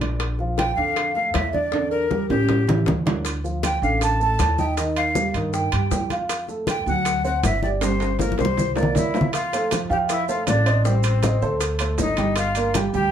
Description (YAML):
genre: Afro-Cuban jazz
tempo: 158 BPM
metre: 4/4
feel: straight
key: F major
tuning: A4 = 440 Hz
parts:
  - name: dark grand piano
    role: accompaniment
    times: 0.0-13.1 s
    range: Db3 to G5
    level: -26 LUFS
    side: right 3 dB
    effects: none
  - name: upright bass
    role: bass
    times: 0.0-13.1 s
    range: G1 to G2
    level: -25 LUFS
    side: equal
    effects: none
  - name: bongos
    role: percussion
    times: 0.0-12.9 s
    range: none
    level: -32 LUFS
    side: left 5 dB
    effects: none
  - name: congas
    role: percussion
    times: 0.0-12.9 s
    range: none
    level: -27 LUFS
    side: left 2 dB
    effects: none
  - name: timbales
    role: percussion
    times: 0.0-12.9 s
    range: none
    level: -29 LUFS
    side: right 4 dB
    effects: none
  - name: vibraphone with soft mallets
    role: melody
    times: 0.6-13.1 s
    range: G4 to A5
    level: -25 LUFS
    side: right 1 dB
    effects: none
  - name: breathy bright jazz flute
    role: second line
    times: 0.6-13.1 s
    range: C4 to A5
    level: -27 LUFS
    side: left 4 dB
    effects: none
  - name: maracas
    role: percussion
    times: 3.3-13.1 s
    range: none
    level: -36 LUFS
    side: right 7 dB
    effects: none
room: wet small room reverb, RT60 0.5 s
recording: heard from further back in the room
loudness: -19 LUFS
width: side -9 dB against mid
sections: 0.0-9.3 A section; 9.3-13.1 B section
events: drum fill 1.7-3.3, 7.8-9.3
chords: 0.2 Bbmaj7; 1.7 Em7b5; 2.5 A7; 3.3 Dm; 4.8 Ebadd9; 6.3 F; 7.1 D7; 7.8 Gm; 8.6 C9; 9.3 F; 10.9 Am7b5; 11.6 D5; 12.4 Gm7